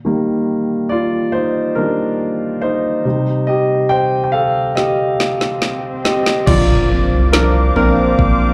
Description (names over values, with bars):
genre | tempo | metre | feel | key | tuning
pop ballad | 70 BPM | 4/4 | straight | Bb major | A4 = 436 Hz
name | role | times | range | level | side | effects
warm concert grand piano | accompaniment | 0.0-8.5 s | C3 to G5 | -18 LUFS | equal | slapback echo
swell and impact | sound effects | 5.1-8.5 s | none | -28 LUFS | equal | none
smooth R&B drum kit | drums | 4.8-8.4 s | crash cymbal, kick drum, snare drum, toms | -20 LUFS | equal | overdrive
warm analog pad | sustained chords | 6.5-8.5 s | C5 to D6 | -24 LUFS | equal | chorus
picked steel-string acoustic guitar | arpeggios | 6.5-8.5 s | Bb2 to Bb4 | -25 LUFS | equal | slapback echo
saturated sub bass | bass | 6.5-8.5 s | Bb1 to C2 | -18 LUFS | equal | none
room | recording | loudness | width
moderate club reverb, RT60 0.6 s | live gig heard through the venue's PA, club reverb | -16 LUFS | mono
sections
0.0-6.5 A section; 6.5-8.5 B section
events
grand piano solo 0.0-6.5, 6.5-8.5; drum fill 4.8-6.5; swell 5.1-6.5; impact 6.5-8.5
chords
0.0 Ebadd9; 3.0 Cm; 6.5 Bbadd9